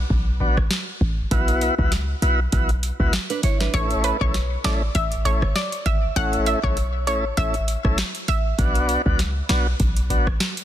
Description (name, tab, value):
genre	dancehall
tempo	99 BPM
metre	4/4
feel	swing 56% on 16ths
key	A major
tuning	A4 = 439 Hz
part	short 808-style bass	bass	0.0-10.4 s	G#1 to C#2	-23 LUFS	equal	none
part	booming analog drum machine	drums	0.1-10.6 s	hi-hat, kick drum, rim click, snare drum	-23 LUFS	equal	none
part	tonewheel organ	accompaniment	0.4-10.3 s	A3 to F#4	-26 LUFS	left 1 dB	slow rotary speaker
part	nylon-string guitar	arpeggios	3.3-3.9 s	D4 to C#5	-27 LUFS	right 8 dB	none
part	analog pluck	melody	3.7-8.4 s	B4 to F#5	-26 LUFS	right 1 dB	chorus, ping-pong delay
room	little or no reverb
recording	dense, heavily limited modern master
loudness	-19 LUFS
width	side -11 dB against mid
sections	0.0-10.6 A section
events	none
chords	0.0 Bm; 1.3 Esus2/B; 3.7 A; 8.6 Bm